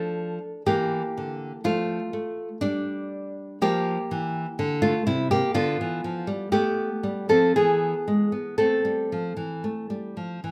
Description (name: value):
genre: classical, baroque-style dance for nylon-string guitar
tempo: 57-63 BPM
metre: 3/4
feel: rubato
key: A minor from 5.5 s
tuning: A4 = 440 Hz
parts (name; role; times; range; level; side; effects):
- nylon-string guitar; solo; 0.0-10.5 s; C3 to A4; -26 LUFS; equal; none
room: light reverb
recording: band playing live in one room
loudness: -26 LUFS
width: mono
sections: 0.0-10.5 A section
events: none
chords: 0.0 Dm/F; 1.6 F; 2.6 Gm; 5.5 B(b5, no3); 7.5 E; 8.6 Am